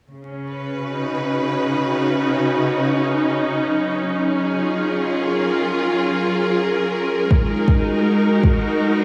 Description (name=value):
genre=future garage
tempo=133 BPM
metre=4/4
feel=swing 65% on 16ths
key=unclear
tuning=A4 = 439 Hz
part: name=clear studio string section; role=sustained chords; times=0.1-9.0 s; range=C#3 to B4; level=-20 LUFS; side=equal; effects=sidechain pumping
part: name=electronic kick drum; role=drums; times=7.3-8.6 s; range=none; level=-18 LUFS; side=equal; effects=none
room=wet huge ambient reverb, RT60 8.0 s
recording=dreamy mix soaked in reverb, vinyl crackle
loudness=-20 LUFS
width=mono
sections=0.1-9.0 A section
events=none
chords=0.1 C#7sus4; 3.7 F#maj7; 7.3 G#7(no3)